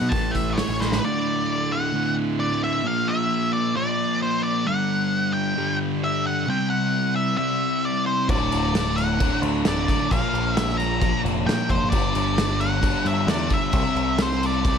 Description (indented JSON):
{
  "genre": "quiet-loud alternative rock",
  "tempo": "132 BPM",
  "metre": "4/4",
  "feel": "straight",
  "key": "unclear",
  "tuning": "A4 = 440 Hz",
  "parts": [
    { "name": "octave-fuzz lead guitar", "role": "melody", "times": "0.0-14.8 s", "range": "B4 to Bb5", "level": "-25 LUFS", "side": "equal", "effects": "distortion, analog delay" },
    { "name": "fuzz guitar", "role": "riff", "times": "0.0-14.8 s", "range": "D2 to C4", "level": "-24 LUFS", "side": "equal", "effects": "distortion" },
    { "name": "growling picked electric bass", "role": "bass", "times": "0.0-1.0, 8.3-14.7 s", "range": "D1 to B2", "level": "-27 LUFS", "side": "equal", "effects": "overdrive" },
    { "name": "loose indie drum kit", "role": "drums", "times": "0.1-1.0, 8.3-14.8 s", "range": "crash cymbal, hi-hat, kick drum, snare drum", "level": "-24 LUFS", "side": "equal", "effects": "none" }
  ],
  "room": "light reverb, small room ambience",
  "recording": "none",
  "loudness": "-20 LUFS",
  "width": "side -7 dB against mid",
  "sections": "0.0-1.0 A section; 1.0-14.8 B section",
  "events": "lead electric guitar solo 0.0-1.0; drum fill 0.8",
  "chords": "0.1 A; 1.0 D; 2.8 Bb; 4.7 G5; 6.5 C; 8.3 D; 10.1 Bb5; 11.9 G5; 13.7 C",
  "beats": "0.12 0.58 | 1.03 1.49 1.94 2.40 | 2.85 3.30 3.76 4.21 | 4.66 5.12 5.57 6.02 | 6.48 6.93 7.38 7.84 | 8.29 8.74 9.20 9.65 | 10.10 10.56 11.01 11.46 | 11.92 12.37 12.83 13.28 | 13.74 14.19 14.65"
}